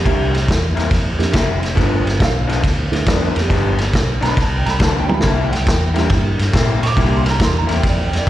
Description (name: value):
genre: electric blues shuffle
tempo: 138 BPM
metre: 4/4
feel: swing 67% on 8ths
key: unclear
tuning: A4 = 440 Hz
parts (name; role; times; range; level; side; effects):
- tack piano; accompaniment; 0.0-8.3 s; G3 to D6; -23 LUFS; right 5 dB; slapback echo
- electric guitar through a small old amp; riff; 0.0-8.3 s; G2 to E4; -23 LUFS; left 6 dB; slapback echo
- vintage muted fingered electric bass; bass; 0.0-8.3 s; F1 to Bb2; -18 LUFS; equal; none
- vintage drum kit; drums; 0.1-8.3 s; kick drum, ride cymbal, snare drum, toms; -18 LUFS; equal; none
room: light reverb, studio reverb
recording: live gig heard through the venue's PA, recital hall reverb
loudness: -14 LUFS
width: side -13 dB against mid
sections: 0.0-8.3 A section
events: drum fill 5.0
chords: 0.1 C7; 1.8 G7; 5.2 C7